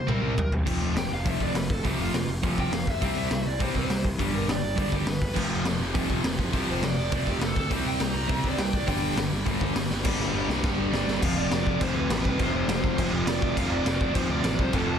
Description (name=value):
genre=punk rock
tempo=205 BPM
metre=4/4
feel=straight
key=unclear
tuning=A4 = 440 Hz
part: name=bluesy overdriven lead guitar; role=melody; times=0.0-15.0 s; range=F4 to Bb5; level=-32 LUFS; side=right 1 dB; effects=distortion
part: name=distorted electric guitar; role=riff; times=0.1-15.0 s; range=F2 to C4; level=-31 LUFS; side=left 13 dB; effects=distortion
part: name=sludgy distorted guitar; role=riff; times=0.1-15.0 s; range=F2 to C4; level=-31 LUFS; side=right 12 dB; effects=overdrive
part: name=fuzz picked electric bass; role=bass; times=0.1-15.0 s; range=F1 to D2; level=-31 LUFS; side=equal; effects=overdrive
part: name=raw garage drum kit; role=drums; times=0.1-14.8 s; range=crash cymbal, hi-hat, kick drum, snare drum, toms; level=-28 LUFS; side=equal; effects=none
part: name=high-gain distorted guitar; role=riff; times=5.3-11.2 s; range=F2 to C4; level=-33 LUFS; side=equal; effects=distortion
room=light reverb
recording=dense, heavily limited modern master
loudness=-24 LUFS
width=side -8 dB against mid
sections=0.7-10.0 A section; 10.0-11.2 B section; 11.2-15.0 C section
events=drum fill 0.0-0.7, 9.9, 10.0-11.2; lead electric guitar solo 0.7-10.0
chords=0.0 C5; 0.7 F5; 3.0 C; 4.2 G; 5.4 F5; 7.7 C5; 8.9 G5; 11.2 F5